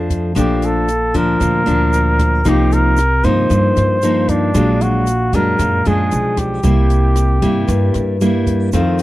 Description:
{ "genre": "bossa nova", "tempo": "115 BPM", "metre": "4/4", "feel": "straight", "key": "unclear", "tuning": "A4 = 440 Hz", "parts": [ { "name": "nylon-string guitar", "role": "accompaniment", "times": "0.0-9.0 s", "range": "F2 to E4", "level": "-16 LUFS", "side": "equal", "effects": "none" }, { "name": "upright bass", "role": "bass", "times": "0.0-9.0 s", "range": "Bb1 to G2", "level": "-17 LUFS", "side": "equal", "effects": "none" }, { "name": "compact cocktail drum kit", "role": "drums", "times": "0.1-9.0 s", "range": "hi-hat, kick drum, rim click", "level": "-23 LUFS", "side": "equal", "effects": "none" }, { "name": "egg shaker", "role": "percussion", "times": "0.1-9.0 s", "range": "none", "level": "-36 LUFS", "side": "right 12 dB", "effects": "none" }, { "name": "breathy flugelhorn", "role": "melody", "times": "0.4-9.0 s", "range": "D4 to C5", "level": "-18 LUFS", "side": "equal", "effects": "none" } ], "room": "little or no reverb", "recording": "dry, close 1970s-style studio recording", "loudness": "-12 LUFS", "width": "side -16 dB against mid", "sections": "0.0-9.0 A section", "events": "none", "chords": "0.0 Bbmaj7; 2.5 Cm7; 4.5 Bb7b13; 6.1 Bdim7; 6.6 C7", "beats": "| 0.36 0.89 1.41 1.93 | 2.45 2.98 3.50 4.02 | 4.54 5.07 5.59 6.11 | 6.63 7.16 7.68 8.20 | 8.72" }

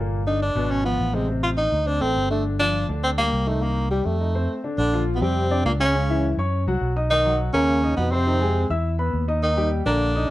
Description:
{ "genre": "jazz", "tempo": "206 BPM", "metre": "4/4", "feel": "straight", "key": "G minor", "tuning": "A4 = 439 Hz", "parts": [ { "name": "clear concert grand piano", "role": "accompaniment", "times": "0.0-10.3 s", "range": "Bb2 to E6", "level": "-27 LUFS", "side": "left 3 dB", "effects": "none" }, { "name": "fingered electric bass", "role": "bass", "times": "0.0-10.3 s", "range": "G1 to Gb2", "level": "-24 LUFS", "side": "equal", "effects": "none" }, { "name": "warm tenor saxophone", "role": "melody", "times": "0.3-10.3 s", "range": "G3 to F4", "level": "-23 LUFS", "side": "equal", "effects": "none" }, { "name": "warm trombone", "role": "second line", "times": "4.8-10.3 s", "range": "Bb2 to Eb3", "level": "-29 LUFS", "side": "right 2 dB", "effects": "none" } ], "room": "light reverb", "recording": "dark, warm production", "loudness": "-20 LUFS", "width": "side -16 dB against mid", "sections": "0.0-4.8 A section; 4.8-10.3 B section", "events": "break 4.5", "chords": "0.1 Gm; 0.7 C#7b13/G#; 1.3 Adim; 1.9 D5; 2.5 Gm7; 3.6 Cm7; 4.2 F7; 4.8 Bb6; 5.9 Dbm; 6.5 Gb5; 7.1 Bmaj7; 8.3 Fm7; 8.8 E5; 9.4 Eb", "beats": "| 0.12 0.41 0.70 0.99 | 1.28 1.57 1.87 2.16 | 2.45 2.74 3.03 3.33 | 3.62 3.91 4.20 4.49 | 4.78 5.07 5.36 5.65 | 5.95 6.24 6.53 6.82 | 7.11 7.40 7.69 7.98 | 8.27 8.56 8.85 9.13 | 9.43 9.71 10.00 10.29" }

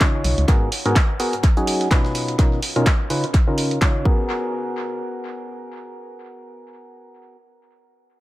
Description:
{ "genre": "piano house", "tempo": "126 BPM", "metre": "4/4", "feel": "swing 57% on 16ths", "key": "G# dorian", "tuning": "A4 = 442 Hz", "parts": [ { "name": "percussive organ stab", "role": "riff", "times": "0.0-7.4 s", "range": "G#2 to C#5", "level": "-23 LUFS", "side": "equal", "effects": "chorus, sidechain pumping, tape echo" }, { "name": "breakbeat sampler-style drum kit", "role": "drums", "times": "0.0-3.9 s", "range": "hi-hat, snare drum", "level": "-36 LUFS", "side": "right 1 dB", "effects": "none" }, { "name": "electronic kick drum", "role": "drums", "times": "0.0-4.2 s", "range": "none", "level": "-17 LUFS", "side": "equal", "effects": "none" }, { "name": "punchy analog drum machine", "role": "drums", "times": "0.0-3.9 s", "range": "handclaps, hi-hat", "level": "-26 LUFS", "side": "equal", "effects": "tape echo" }, { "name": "organ-like FM bass", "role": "bass", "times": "0.2-0.5 s", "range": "B1 to C#2", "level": "-18 LUFS", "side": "equal", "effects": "sidechain pumping" } ], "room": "light reverb", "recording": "echo-heavy mix", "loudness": "-17 LUFS", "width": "side -17 dB against mid", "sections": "0.0-4.3 A section; 4.3-8.1 B section", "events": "filter sweep on synth stab 0.0-4.3", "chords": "0.5 G#m9; 1.4 F#5; 2.1 Bmaj9#11; 3.1 C#9; 4.1 G#m9", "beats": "0.01 | 0.48 0.96 1.43 1.91 | 2.39 2.86 3.34 3.81 | 4.29 4.77 5.24 5.72 | 6.20 6.67 7.15" }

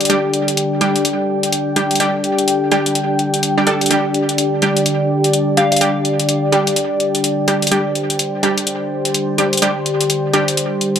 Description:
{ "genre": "bass house", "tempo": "126 BPM", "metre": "4/4", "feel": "swing 61% on 16ths", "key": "unclear", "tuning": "A4 = 440 Hz", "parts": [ { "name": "sweeping resonant pad", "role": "sustained chords", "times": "0.0-11.0 s", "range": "D3 to G5", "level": "-19 LUFS", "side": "equal", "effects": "chorus, phaser" }, { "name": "electronic hi-hat", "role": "drums", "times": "0.0-11.0 s", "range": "none", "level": "-19 LUFS", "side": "left 2 dB", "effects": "none" }, { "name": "warbly tape-like pad", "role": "texture", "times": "0.0-11.0 s", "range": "D4 to G5", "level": "-20 LUFS", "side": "left 2 dB", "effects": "chorus, built-in reverb" }, { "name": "orchestra-hit-like synth stab", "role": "stabs", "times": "0.1-11.0 s", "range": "G3 to A4", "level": "-19 LUFS", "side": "right 1 dB", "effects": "built-in reverb, tape echo" }, { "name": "soft synth bell", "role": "melody", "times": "5.6-5.8 s", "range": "F5", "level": "-21 LUFS", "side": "left 1 dB", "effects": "chorus, tape echo" } ], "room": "moderate plate reverb, RT60 1.3 s", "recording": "none", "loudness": "-14 LUFS", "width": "side -8 dB against mid", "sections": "0.0-11.0 A section", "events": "none", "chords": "0.0 G5", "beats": "| 0.10 0.57 1.05 1.52 | 2.00 2.48 2.95 3.43 | 3.91 4.38 4.86 5.33 | 5.81 6.29 6.76 7.24 | 7.71 8.19 8.67 9.14 | 9.62 10.10 10.57" }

